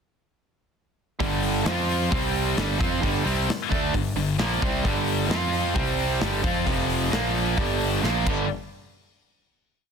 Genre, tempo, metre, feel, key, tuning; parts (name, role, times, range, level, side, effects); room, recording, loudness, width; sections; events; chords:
hard rock; 132 BPM; 4/4; straight; G minor; A4 = 440 Hz
overdriven semi-hollow guitar; riff; 1.2-8.5 s; F2 to F4; -28 LUFS; right 13 dB
scooped high-gain guitar; riff; 1.2-8.4 s; F2 to F4; -28 LUFS; left 13 dB; distortion
tight distorted guitar; riff; 1.2-8.5 s; F2 to F4; -30 LUFS; left 1 dB; distortion
fuzz fingered electric bass; bass; 1.2-8.5 s; F1 to F2; -29 LUFS; equal; overdrive
big rock drum kit; drums; 1.2-8.4 s; crash cymbal, hi-hat, kick drum, snare drum; -29 LUFS; left 1 dB
little or no reverb; dense, heavily limited modern master; -22 LUFS; side -6 dB against mid
1.2-8.5 riff; 8.5-9.9 final hit
drum fill 8.0-8.5
1.2 G5; 1.7 F5; 2.1 C5; 2.6 Gm; 5.3 F5; 5.8 C5; 6.2 G5; 6.7 F5; 7.1 Bb5; 7.6 G5; 8.0 Bb5; 8.3 G5; 8.5 N.C.